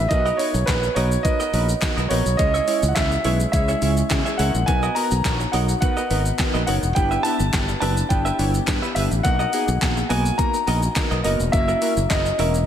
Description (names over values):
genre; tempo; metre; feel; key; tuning
dance-pop; 105 BPM; 4/4; straight; B major; A4 = 440 Hz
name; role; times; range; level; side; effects
warm concert grand piano; melody; 0.0-12.7 s; B4 to A#5; -24 LUFS; equal; digital delay, slapback echo
modern bright fingered electric bass; bass; 0.0-12.7 s; E1 to C#3; -22 LUFS; equal; sidechain pumping
chorused retro synth keys; accompaniment; 0.1-12.6 s; G#3 to C#5; -26 LUFS; equal; sidechain pumping, slapback echo
direct-recorded clean electric guitar; riff; 0.1-12.6 s; B3 to E5; -30 LUFS; right 5 dB; lush chorus, slapback echo
pop drum kit; drums; 0.1-12.7 s; handclaps, hi-hat, kick drum, shaker, snare drum; -24 LUFS; equal; overdrive
group handclap; percussion; 0.7-12.2 s; none; barely audible; none; none
room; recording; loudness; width
moderate lush hall reverb, RT60 1.9 s, digital ambience; big arena sound; -18 LUFS; side -9 dB against mid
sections
0.0-12.7 A section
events
none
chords
0.1 Bmaj7; 2.4 C#m; 4.7 Bmaj7; 7.0 G6; 9.2 Bmaj7; 11.5 F#7